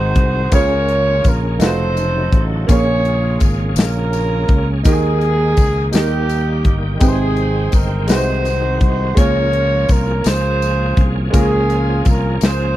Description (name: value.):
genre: slow gospel.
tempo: 56 BPM (dotted quarters).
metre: 6/8.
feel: straight.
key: unclear.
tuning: A4 = 440 Hz.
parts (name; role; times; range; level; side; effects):
mellow horn section; melody; 0.0-12.8 s; Bb3 to Db5; -20 LUFS; right 1 dB; tape echo.
clear baby grand piano; accompaniment; 0.0-12.8 s; Ab2 to G5; -23 LUFS; right 1 dB; none.
bright tonewheel organ; sustained chords; 0.0-12.8 s; Db3 to G5; -26 LUFS; right 2 dB; fast rotary speaker, overdrive, chorus vibrato.
fingered electric bass; bass; 0.0-12.8 s; F1 to Eb2; -18 LUFS; equal; none.
modern studio drum kit; drums; 0.2-12.6 s; hi-hat, kick drum, snare drum; -14 LUFS; equal; none.
tambourine; percussion; 0.5-12.8 s; none; -32 LUFS; left 28 dB; none.
room: little or no reverb.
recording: dry, close 1970s-style studio recording.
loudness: -13 LUFS.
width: side -14 dB against mid.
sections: 0.0-12.8 A section.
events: none.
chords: 0.0 Ab7; 0.5 Db6; 1.6 F7b9; 2.7 Bbm7; 4.9 Ebsus4; 5.9 Eb; 7.0 Abmaj7; 8.1 Ab7/C; 9.2 Db6.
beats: | 0.53 1.61 | 2.69 3.77 | 4.85 5.93 | 7.01 8.09 | 9.17 10.26 | 11.34 12.42.